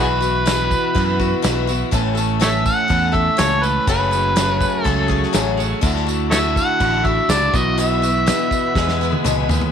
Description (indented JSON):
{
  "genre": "folk rock and heartland rock",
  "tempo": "123 BPM",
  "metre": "4/4",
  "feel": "straight",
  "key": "E major",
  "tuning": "A4 = 441 Hz",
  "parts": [
    { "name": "overdriven harmonica", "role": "melody", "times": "0.0-9.2 s", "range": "A4 to F#5", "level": "-19 LUFS", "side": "equal", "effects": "none" },
    { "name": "picked swing-style acoustic guitar", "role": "accompaniment", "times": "0.0-9.7 s", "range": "E2 to A4", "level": "-23 LUFS", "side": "left 13 dB", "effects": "none" },
    { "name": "bright tonewheel organ", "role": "sustained chords", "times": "0.0-9.7 s", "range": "A3 to B4", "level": "-30 LUFS", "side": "equal", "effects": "slow rotary speaker, overdrive" },
    { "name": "twelve-string electric guitar", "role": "riff", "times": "0.0-9.7 s", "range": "E2 to A4", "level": "-25 LUFS", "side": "right 14 dB", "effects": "none" },
    { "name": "picked electric bass", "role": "bass", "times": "0.0-9.7 s", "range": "F#1 to F#2", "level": "-22 LUFS", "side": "equal", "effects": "none" },
    { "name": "tambourine", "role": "percussion", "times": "0.2-9.6 s", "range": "none", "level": "-32 LUFS", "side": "right 14 dB", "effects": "none" },
    { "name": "natural country drum kit", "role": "drums", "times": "0.5-9.7 s", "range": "crash cymbal, kick drum, snare drum, toms", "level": "-23 LUFS", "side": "equal", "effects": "none" }
  ],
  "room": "light reverb, studio ambience",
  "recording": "1960s-style stereo with parts hard left and right",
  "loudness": "-15 LUFS",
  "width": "side -8 dB against mid",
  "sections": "0.0-9.7 A section",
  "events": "drum fill 8.8-9.7",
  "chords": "0.0 Bsus4; 1.9 A; 3.9 F#madd9; 5.8 Dadd9; 7.5 Bsus4; 8.8 E"
}